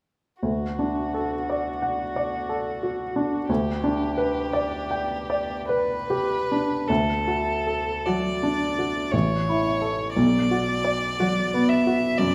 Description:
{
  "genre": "classical, slow romantic movement for piano trio",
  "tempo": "48-61 BPM",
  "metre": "3/4",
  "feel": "rubato",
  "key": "D major",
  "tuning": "A4 = 438 Hz",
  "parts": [
    { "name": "rich violin", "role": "melody", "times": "0.4-12.3 s", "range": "F#4 to E5", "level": "-30 LUFS", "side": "equal", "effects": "none" },
    { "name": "clear baby grand piano", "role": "accompaniment", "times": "0.4-12.3 s", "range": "A1 to G5", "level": "-26 LUFS", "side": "equal", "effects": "none" },
    { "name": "rich cello", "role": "second line", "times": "8.1-12.3 s", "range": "E3 to F#3", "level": "-31 LUFS", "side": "equal", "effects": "none" }
  ],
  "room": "wet recital hall reverb, RT60 1.5 s",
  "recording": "none",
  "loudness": "-25 LUFS",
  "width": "mono",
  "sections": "0.4-6.9 A section; 6.9-12.3 B section",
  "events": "none",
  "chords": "0.4 D; 3.5 G/D; 6.9 D; 9.1 A; 10.2 Bm"
}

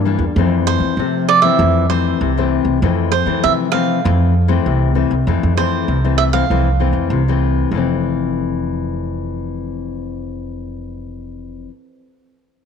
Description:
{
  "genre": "samba and choro",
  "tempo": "98 BPM",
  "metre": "4/4",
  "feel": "straight",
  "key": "F major",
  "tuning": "A4 = 441 Hz",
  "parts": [
    { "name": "nylon-string guitar", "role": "accompaniment", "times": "0.0-11.7 s", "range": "F2 to D4", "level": "-19 LUFS", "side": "left 10 dB", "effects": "none" },
    { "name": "upright bass", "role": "bass", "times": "0.0-11.6 s", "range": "F1 to F3", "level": "-18 LUFS", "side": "right 2 dB", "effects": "none" },
    { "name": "cavaquinho", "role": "melody", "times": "0.7-7.1 s", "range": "C5 to F5", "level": "-18 LUFS", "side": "right 9 dB", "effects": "none" }
  ],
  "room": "light reverb, studio ambience",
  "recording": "1960s-style stereo with parts hard left and right",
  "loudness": "-14 LUFS",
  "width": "side -7 dB against mid",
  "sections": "0.0-5.3 A section; 5.3-7.7 B section; 7.7-10.2 C section",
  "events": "none",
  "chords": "0.4 Fmaj7"
}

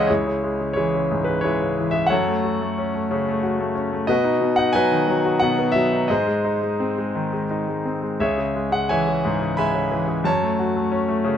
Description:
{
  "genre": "classical, lyrical solo piano",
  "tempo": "85-93 BPM",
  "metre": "3/4",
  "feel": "rubato",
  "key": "C# minor",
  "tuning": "A4 = 440 Hz",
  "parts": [
    { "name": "bright concert grand piano", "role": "solo", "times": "0.0-11.4 s", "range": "C#2 to B5", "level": "-19 LUFS", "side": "left 1 dB", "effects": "none" }
  ],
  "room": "light reverb",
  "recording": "close, detailed microphones",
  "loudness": "-19 LUFS",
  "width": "side -9 dB against mid",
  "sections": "0.1-11.4 A section",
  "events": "none",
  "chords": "0.1 C#m; 2.1 F#m; 4.1 B; 6.1 G#; 8.2 C#m; 10.3 F#m"
}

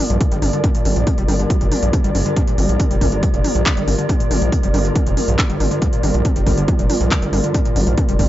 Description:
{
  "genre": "driving peak-time techno",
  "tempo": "139 BPM",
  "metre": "4/4",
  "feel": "straight",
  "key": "G minor",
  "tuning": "A4 = 441 Hz",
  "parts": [
    { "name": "overdriven acid bass", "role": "riff", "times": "0.0-8.3 s", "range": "G2 to G3", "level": "-25 LUFS", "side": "equal", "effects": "distortion, analog chorus, sidechain pumping, tape echo" },
    { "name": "metallic inharmonic drone", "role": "drone", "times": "0.0-8.3 s", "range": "G2 to G3", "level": "-27 LUFS", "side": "right 1 dB", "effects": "chorus, built-in reverb, sidechain pumping" },
    { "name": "ethereal airy pad", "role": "texture", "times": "0.0-8.3 s", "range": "F4 to D5", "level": "-24 LUFS", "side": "equal", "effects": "ensemble chorus, built-in reverb, sidechain pumping" },
    { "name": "gritty driven synth bass", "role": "bass", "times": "0.1-8.3 s", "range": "F1 to Bb1", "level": "-19 LUFS", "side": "equal", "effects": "sidechain pumping" },
    { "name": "techno drum kit", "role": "drums", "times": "0.1-8.3 s", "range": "handclaps, hi-hat, toms", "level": "-24 LUFS", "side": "left 1 dB", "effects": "sidechain pumping on hats, sidechain pumping on toms, sidechain pumping on cymbals" },
    { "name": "electronic kick drum", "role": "drums", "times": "0.2-8.3 s", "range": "none", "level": "-18 LUFS", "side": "equal", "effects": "none" }
  ],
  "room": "little or no reverb",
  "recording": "dry, gritty hardware recording, transformer saturation, nothing above 7.7 kHz",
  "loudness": "-15 LUFS",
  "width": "side -14 dB against mid",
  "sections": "0.0-8.3 A section",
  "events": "none",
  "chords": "0.0 Gm"
}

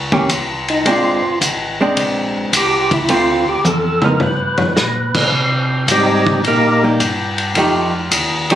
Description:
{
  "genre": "soul jazz organ trio",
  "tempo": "107 BPM",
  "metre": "4/4",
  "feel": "swing 69% on 8ths",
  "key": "Bb mixolydian",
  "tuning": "A4 = 440 Hz",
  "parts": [
    { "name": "tonewheel organ", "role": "bass", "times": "0.0-8.6 s", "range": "F1 to C3", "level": "-23 LUFS", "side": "equal", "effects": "overdrive, slow rotary speaker" },
    { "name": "archtop guitar, miked and amplified", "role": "accompaniment", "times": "0.1-8.6 s", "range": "D3 to G4", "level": "-16 LUFS", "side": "right 1 dB", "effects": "none" },
    { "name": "vintage drum kit", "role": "drums", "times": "0.1-8.6 s", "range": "crash cymbal, hi-hat, kick drum, ride cymbal, snare drum, toms", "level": "-17 LUFS", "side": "left 1 dB", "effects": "none" },
    { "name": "percussive tonewheel organ", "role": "melody", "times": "0.7-6.8 s", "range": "G3 to B4", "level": "-16 LUFS", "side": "right 1 dB", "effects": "overdrive, chorus vibrato, slow rotary speaker" }
  ],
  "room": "light reverb",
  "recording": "recorded on a phone in the room, club reverb",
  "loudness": "-13 LUFS",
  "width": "side -11 dB against mid",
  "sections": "0.0-8.6 A section",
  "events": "tonewheel organ solo 0.0-8.6; drum fill 3.6-4.8",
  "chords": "0.0 Edim7; 0.9 Bb9; 3.1 Dm7; 4.2 G; 5.3 Cm7; 7.6 F9"
}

